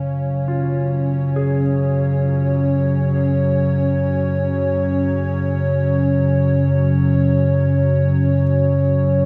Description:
ambient; free time; A4 = 439 Hz
dark analog pad; sustained chords; 0.0-9.3 s; F#3 to C#5; -23 LUFS; equal; chorus
warm baby grand piano; arpeggios; 0.0-9.3 s; C#2 to G#4; -34 LUFS; equal; tape echo
deep rumbling drone; drone; 0.0-9.3 s; F#2 to C#3; -20 LUFS; equal; built-in reverb
bronze singing bowl; texture; 0.0-9.3 s; E#5; -43 LUFS; equal
wet cathedral reverb, RT60 5.7 s; -18 LUFS; mono
0.0-9.3 A section
fade-in on analog synth pad 0.0-9.3; fade-in on grand piano 0.0-9.3
0.0 F#5

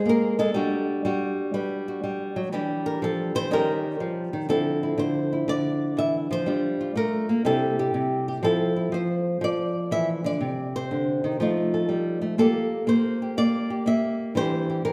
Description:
solo jazz; 122 BPM; 4/4; swing 67% on 8ths; D minor; A4 = 438 Hz
flamenco guitar; solo; 0.0-14.9 s; C3 to E5; -25 LUFS; equal
wet scoring stage reverb, RT60 1.7 s; -25 LUFS; mono
0.0-4.5 A section; 4.5-14.9 B section
nylon-string guitar solo 0.0-4.5
0.0 G#7(no3); 0.6 Gmaj7; 2.5 Em7b5; 3.5 Eb7; 4.5 Dm9; 6.5 Gm7; 7.4 C; 8.4 Fmaj7; 10.4 Cm; 11.4 F7; 12.4 Bb6; 14.3 Em7b5

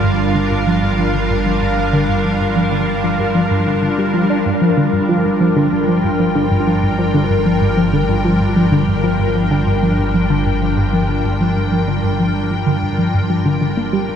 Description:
ambient, sequencer-driven space music; 95 BPM; 4/4; straight; G minor; A4 = 440 Hz
evolving wavetable pad; sustained chords; 0.0-14.2 s; G3 to G5; -17 LUFS; equal; ensemble chorus, built-in reverb, shimmer reverb
tight sequenced synth; riff; 0.0-14.2 s; G2 to D4; -17 LUFS; equal; chorus, vintage 12-bit sampler grit, tape echo
fat analog bass; bass; 0.0-14.2 s; G1; -22 LUFS; equal
wet echo chamber reverb, RT60 2.4 s; echo-heavy mix; -13 LUFS; side -8 dB against mid
0.0-14.2 A section
0.0 Gm7

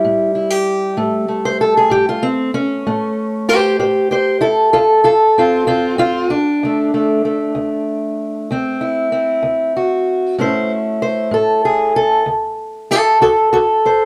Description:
acoustic country blues, solo or duo; 64 BPM (dotted quarters); 12/8; straight; A4 = 437 Hz
fingerpicked acoustic archtop guitar; solo; 0.0-14.1 s; D2 to C5; -16 LUFS; equal
moderate studio reverb, RT60 0.8 s; dark, warm production; -16 LUFS; mono
0.0-12.3 A section; 12.3-14.1 B section
steel-string acoustic guitar solo 12.3-14.1
0.0 A7; 4.7 D7(no3); 10.4 A; 12.3 D5

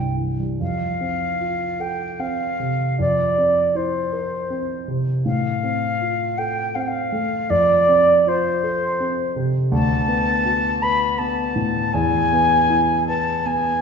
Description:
classical, romantic duo for flute and grand piano; 68-83 BPM; 3/4; rubato; F major; A4 = 439 Hz
mellow concert flute; melody; 0.0-13.8 s; C5 to B5; -20 LUFS; equal
dark concert grand piano; accompaniment; 0.0-13.8 s; C2 to B4; -23 LUFS; equal
wet recital hall reverb, RT60 1.5 s; heard from further back in the room, nothing above 7.6 kHz; -18 LUFS; side -6 dB against mid
0.6-13.8 A section
0.0 C; 0.6 F; 3.0 C7/F; 5.3 F/A; 7.5 F; 9.7 Bm7/D; 11.9 E

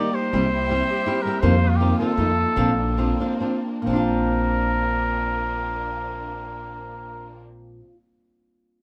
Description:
mexican folk, mariachi; 127-164 BPM; 3/4; swing 53% on 8ths; Bb major; A4 = 442 Hz
mellow trumpet; melody; 0.0-7.4 s; F4 to D5; -28 LUFS; equal
flamenco guitar; accompaniment; 0.0-7.9 s; F2 to G4; -30 LUFS; equal
rich symphonic violin section; sustained chords; 0.0-7.4 s; A3 to E5; -38 LUFS; equal
Celtic harp; arpeggios; 0.0-7.9 s; G3 to G4; -28 LUFS; equal
upright bass; bass; 0.3-7.8 s; Bb1 to F2; -28 LUFS; equal
moderate studio reverb, RT60 0.5 s; -22 LUFS; mono
0.0-3.9 A section; 3.9-6.7 B section
slowing down 1.4-3.9
0.3 C; 1.4 F7sus4; 2.2 F7; 2.6 Bbadd9

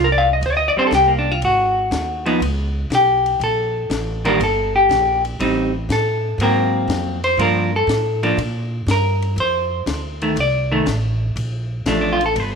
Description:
jazz, small-group swing and bop; 121 BPM; 4/4; swing 69% on 8ths; Bb major; A4 = 439 Hz
vintage hollow-body jazz guitar; accompaniment; 0.0-12.6 s; Eb3 to F5; -17 LUFS; left 1 dB
upright bass; bass; 0.0-12.6 s; G1 to Bb2; -22 LUFS; right 1 dB
compact cocktail drum kit; drums; 0.4-12.5 s; hi-hat, ride cymbal, snare drum; -29 LUFS; left 5 dB
moderate plate reverb, RT60 1.7 s, studio ambience; 1960s-style stereo; -16 LUFS; side -5 dB against mid
0.0-12.6 A section
0.0 Bb69; 1.4 Abm7; 2.4 Bsus2; 3.4 Eb (rootless); 5.4 Am7b5; 6.4 Ab9; 7.4 Gm7; 9.4 F7; 11.4 Bbmaj7

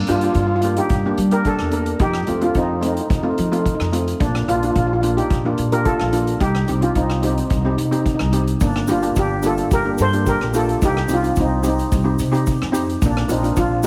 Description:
calypso; 109 BPM; 4/4; straight; Bb major; A4 = 440 Hz
steel pan; melody; 0.1-13.9 s; Bb3 to C5; -23 LUFS; equal
steel pan; accompaniment; 0.1-13.9 s; A3 to Bb4; -25 LUFS; equal
upright bass; bass; 0.1-13.9 s; G1 to G3; -24 LUFS; equal
street-band drum kit; drums; 0.1-13.9 s; hi-hat, kick drum, rim click; -27 LUFS; equal
tube shaker; percussion; 8.6-13.9 s; -40 LUFS; equal
light reverb; heavily compressed radio sound, multiband compression; -19 LUFS; mono
0.0-13.9 A section
0.0 Gm; 2.0 F7; 4.2 Bb; 6.4 Cm; 8.6 Gm; 10.8 Cm; 13.0 Bb

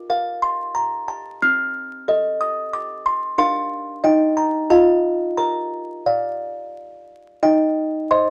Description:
classical, lullaby for music box; 90 BPM; 3/4; straight; Bb major; A4 = 442 Hz
music box; solo; 0.0-8.3 s; C4 to F6; -20 LUFS; equal
moderate studio reverb, RT60 0.7 s; vinyl crackle; -20 LUFS; mono
0.0-7.4 A section
0.0 Bb; 1.4 F7/C; 3.4 Bb/D; 4.0 Eb; 4.7 F7; 5.4 Bb; 7.4 Cm/Eb

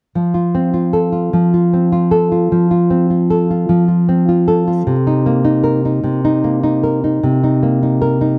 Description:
pop; 51 BPM (dotted quarters); 6/8; straight; F mixolydian; A4 = 439 Hz
nylon-string guitar; accompaniment; 0.2-8.4 s; C3 to Bb4; -14 LUFS; equal
little or no reverb; dry, close 1970s-style studio recording; -15 LUFS; mono
0.2-8.4 A section
0.2 F; 4.9 Cm7

